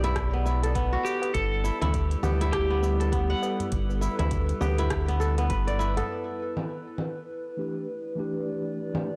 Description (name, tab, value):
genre	organic downtempo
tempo	101 BPM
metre	4/4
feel	swing 60% on 16ths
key	E minor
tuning	A4 = 440 Hz
part	warbly tape-like pad	sustained chords	0.0-9.2 s	G3 to D5	-38 LUFS	equal	chorus, built-in reverb, sidechain pumping
part	kora	arpeggios	0.0-7.4 s	B3 to F#5	-33 LUFS	equal	delay
part	round analog bass	bass	0.0-6.0 s	G1 to D2	-28 LUFS	equal	none
part	organic electronic drum kit	drums	0.0-9.0 s	congas, hi-hat, rim click, shaker	-37 LUFS	equal	soft clipping on snare
part	tabla	percussion	0.0-6.1 s	none	-41 LUFS	equal	none
part	electronic kick drum	drums	0.2-5.6 s	none	-34 LUFS	equal	none
part	clean lap steel guitar	melody	1.0-5.5 s	G4 to A4	-35 LUFS	equal	delay
part	mellow tine electric piano	accompaniment	7.6-9.1 s	E3 to G4	-34 LUFS	equal	sidechain pumping, delay
room	light reverb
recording	blown-out, overdriven recording, overdrive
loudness	-27 LUFS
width	mono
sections	0.0-6.1 A section; 6.1-9.2 B section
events	none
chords	0.0 Em7; 1.3 G69; 6.1 Em7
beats	0.16 0.75 | 1.34 1.94 2.53 3.13 | 3.72 4.32 4.91 5.50 | 6.10 6.69 7.29 7.88 | 8.47 9.07